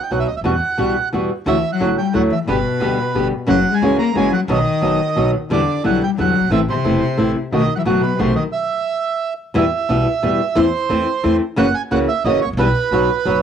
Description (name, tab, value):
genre	tango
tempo	178 BPM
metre	3/4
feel	rubato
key	E minor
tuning	A4 = 440 Hz
part	bandoneon	melody	0.0-13.4 s	B4 to A#5	-21 LUFS	right 6 dB	cassette tape
part	flamenco guitar	accompaniment	0.1-13.4 s	B2 to G4	-18 LUFS	equal	cassette tape, plate reverb
part	upright bass	bass	0.1-13.4 s	E1 to E2	-25 LUFS	equal	none
part	warm cello	second line	1.5-8.4 s	B2 to A#3	-20 LUFS	left 6 dB	cassette tape
room	moderate studio reverb, RT60 0.5 s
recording	home recording on cassette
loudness	-15 LUFS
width	side -8 dB against mid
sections	0.0-9.5 A section; 9.5-13.4 B section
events	stop 8.5-9.5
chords	0.4 Emadd9; 1.5 Dadd9; 2.5 G; 3.5 F#7; 4.5 B; 5.5 Em7; 6.5 Am; 7.5 B7; 8.5 N.C.; 9.5 Em; 10.6 Am/E; 11.6 F#7; 12.6 Em/B; 12.9 B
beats	0.10 | 0.44 0.78 1.12 | 1.46 1.80 2.14 | 2.48 2.81 3.15 | 3.48 3.82 4.15 | 4.49 4.82 5.16 | 5.50 5.84 6.18 | 6.52 6.85 7.18 | 7.52 7.85 8.19 | 8.52 8.86 9.21 | 9.54 9.89 10.22 | 10.56 10.90 11.23 | 11.57 11.90 12.24 | 12.57 12.91 13.25